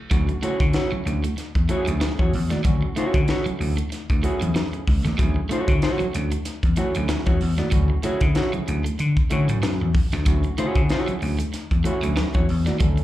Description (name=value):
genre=funk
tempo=95 BPM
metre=4/4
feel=swing 56% on 16ths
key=unclear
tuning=A4 = 440 Hz
part: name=electric guitar at the edge of break-up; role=riff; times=0.1-13.0 s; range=F#3 to A3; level=-30 LUFS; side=right 4 dB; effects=slapback echo
part: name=overdriven tine electric piano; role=stabs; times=0.1-13.0 s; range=A3 to A4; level=-32 LUFS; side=right 4 dB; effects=plate reverb, slapback echo
part: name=vintage slap bass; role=bass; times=0.1-13.0 s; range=C#2 to D3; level=-22 LUFS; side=left 1 dB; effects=none
part: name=crisp fusion drum kit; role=drums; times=0.1-13.0 s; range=hi-hat, kick drum, snare drum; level=-24 LUFS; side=equal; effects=none
part: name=mellow electric guitar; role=accompaniment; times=0.4-12.8 s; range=E4 to D5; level=-27 LUFS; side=left 2 dB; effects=plate reverb, slapback echo
room=light reverb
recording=live gig heard through the venue's PA, club reverb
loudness=-20 LUFS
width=side -14 dB against mid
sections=0.1-13.0 A section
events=none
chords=0.1 Dmaj9